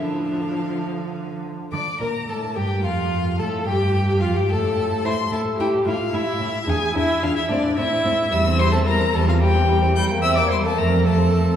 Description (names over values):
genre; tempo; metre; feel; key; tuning
quick classical-period movement for string quartet; 73 BPM (dotted quarters); 6/8; rubato; D minor; A4 = 440 Hz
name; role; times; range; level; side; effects
rich violin; melody; 0.0-11.6 s; D5 to G6; -26 LUFS; left 4 dB; none
rich violin; second line; 0.0-11.6 s; G3 to D5; -26 LUFS; left 2 dB; none
warm viola; accompaniment; 0.0-11.6 s; F3 to G5; -24 LUFS; right 1 dB; none
rich cello; bass; 0.0-11.5 s; E2 to D3; -22 LUFS; right 1 dB; none
room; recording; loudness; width
wet church reverb, RT60 3.7 s; recorded in a church or concert hall, small room ambience; -18 LUFS; side -9 dB against mid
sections
0.0-1.7 A section; 1.7-11.6 A section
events
none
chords
0.0 Dm; 3.4 Gsus2; 4.2 Fadd9; 5.0 A5; 6.7 E(b9); 7.5 Am; 8.3 C/E; 10.0 C7/E; 10.8 F